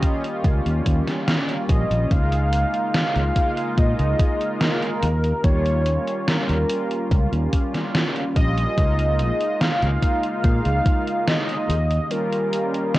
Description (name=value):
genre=vaporwave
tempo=72 BPM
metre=4/4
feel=straight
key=unclear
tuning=A4 = 440 Hz
part: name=warm velvety synth lead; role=melody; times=0.0-13.0 s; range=Bb4 to F5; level=-26 LUFS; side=equal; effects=chorus, tape echo
part: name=mellow synth brass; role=accompaniment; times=0.0-13.0 s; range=G3 to F4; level=-27 LUFS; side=equal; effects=analog chorus, tape echo
part: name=warbly tape-like pad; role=sustained chords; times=0.0-13.0 s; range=Db3 to G4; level=-34 LUFS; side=equal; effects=chorus, built-in reverb
part: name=electronic kick drum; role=drums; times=0.0-11.0 s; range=none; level=-20 LUFS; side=equal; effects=vintage 12-bit sampler grit
part: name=gated 80s digital drum machine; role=drums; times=0.0-13.0 s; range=hi-hat, snare drum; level=-24 LUFS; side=equal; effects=gated reverb, gated reverb snare, vintage 12-bit sampler grit
part: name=fingered electric bass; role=bass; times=0.4-12.0 s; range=Bb1 to Bb2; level=-21 LUFS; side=equal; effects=none
room=light reverb, digital ambience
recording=worn, warbling old tape, cassette tape, warbly pitch drift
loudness=-19 LUFS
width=side -17 dB against mid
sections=0.0-13.0 A section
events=kick drops out 12.1-13.0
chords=0.0 Eb7; 2.1 Db69; 5.0 Eb7; 8.8 Db69; 11.7 Eb7